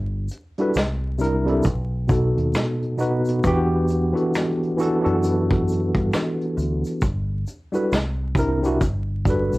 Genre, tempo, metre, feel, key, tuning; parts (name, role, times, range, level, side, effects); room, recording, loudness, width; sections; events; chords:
lo-fi hip hop; 67 BPM; 4/4; swing 60% on 16ths; A4 = 440 Hz
deep dub fingered electric bass; bass; 0.0-9.6 s; G1 to G2; -24 LUFS; equal
vintage brush drum kit; drums; 0.3-9.6 s; finger snaps, hi-hat, kick drum, snare drum; -24 LUFS; equal; vintage 12-bit sampler grit
egg shaker; percussion; 0.3-9.6 s; -47 LUFS; left 2 dB
tine electric piano; accompaniment; 0.6-9.6 s; B2 to B4; -21 LUFS; equal; overdrive, fast stereo tremolo, cassette tape
light reverb; home recording on cassette, vinyl crackle; -20 LUFS; side -20 dB against mid
0.0-9.6 A section
0.0 Gmaj13; 0.8 C9; 1.6 B7; 3.4 Em9; 7.0 Gmaj13; 7.9 C9; 8.8 Gmaj9